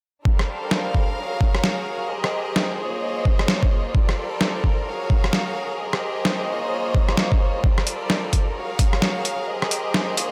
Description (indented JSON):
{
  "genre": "UK garage, two-step garage",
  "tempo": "130 BPM",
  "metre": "4/4",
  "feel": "swing 61% on 16ths",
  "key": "unclear",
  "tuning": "A4 = 442 Hz",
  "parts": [
    { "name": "clear studio violin section", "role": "sustained chords", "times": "0.3-10.3 s", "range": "G3 to F5", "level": "-28 LUFS", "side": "equal", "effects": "sidechain pumping" },
    { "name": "electronic kick drum", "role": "drums", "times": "0.3-8.9 s", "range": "none", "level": "-21 LUFS", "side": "equal", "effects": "overdrive" },
    { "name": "boom bap sampler-style drum kit", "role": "drums", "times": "0.4-10.3 s", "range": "hi-hat, rim click, snare drum", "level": "-27 LUFS", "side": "equal", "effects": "overdrive" }
  ],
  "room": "moderate plate reverb, RT60 1.8 s",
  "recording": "dreamy mix soaked in reverb",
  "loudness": "-22 LUFS",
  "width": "mono",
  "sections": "0.3-10.3 A section",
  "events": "none",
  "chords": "0.3 Gm11; 1.2 F#maj9; 2.1 Abmaj9/G; 2.8 Bbm11; 3.9 Gm11; 4.9 F#maj9; 5.8 Abmaj9/G; 6.5 Bbm11; 7.6 Gm11; 8.6 F#maj9; 9.5 Abmaj9/G"
}